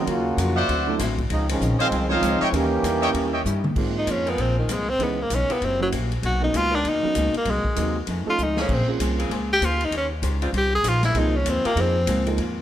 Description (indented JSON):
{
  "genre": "jazz, big band swing",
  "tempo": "195 BPM",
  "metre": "4/4",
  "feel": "swing 62% on 8ths",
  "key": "Ab major",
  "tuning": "A4 = 440 Hz",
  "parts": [
    { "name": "clear trombone section", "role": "second line", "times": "0.0-3.5 s", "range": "Db3 to G4", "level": "-25 LUFS", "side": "right 1 dB", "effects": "none" },
    { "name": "warm grand piano", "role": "accompaniment", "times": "0.0-12.4 s", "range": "D3 to A#4", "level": "-30 LUFS", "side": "right 5 dB", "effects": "none" },
    { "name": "archtop guitar, miked and amplified", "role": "accompaniment", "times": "0.1-12.6 s", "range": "F2 to C5", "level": "-32 LUFS", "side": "left 4 dB", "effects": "none" },
    { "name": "upright bass", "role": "bass", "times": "0.1-12.6 s", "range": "Gb1 to Ab2", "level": "-25 LUFS", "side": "equal", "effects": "none" },
    { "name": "swinging big-band drum kit", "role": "drums", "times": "0.1-12.5 s", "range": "crash cymbal, hi-hat, kick drum, ride cymbal, snare drum, toms", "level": "-31 LUFS", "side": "left 1 dB", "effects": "none" },
    { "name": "clear trumpet section", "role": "stabs", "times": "0.6-3.4 s", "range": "C5 to G5", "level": "-25 LUFS", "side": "equal", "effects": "none" },
    { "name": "bright tenor saxophone", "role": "melody", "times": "4.0-12.3 s", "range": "Eb3 to Ab4", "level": "-23 LUFS", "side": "left 1 dB", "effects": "none" },
    { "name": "clear saxophone section", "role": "sustained chords", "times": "4.3-11.7 s", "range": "C3 to Bb4", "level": "-34 LUFS", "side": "left 1 dB", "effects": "none" }
  ],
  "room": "light reverb",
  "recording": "none",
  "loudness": "-20 LUFS",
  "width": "side -11 dB against mid",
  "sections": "0.0-3.8 A section; 3.8-12.6 B section",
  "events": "trombone section solo 0.0-3.8; drum fill 3.5-3.8, 8.4-8.7; tenor saxophone solo 3.8-12.6",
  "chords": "0.1 Ebm9; 0.7 D9; 1.3 Dbmaj9; 2.5 Eb7b9; 3.8 Ab69; 5.0 Dbm9; 5.6 Gb7b9; 6.2 Bmaj9; 7.5 Cm7b5; 8.1 F7alt; 8.7 Bbm9; 9.9 Eb13; 11.2 Ab69"
}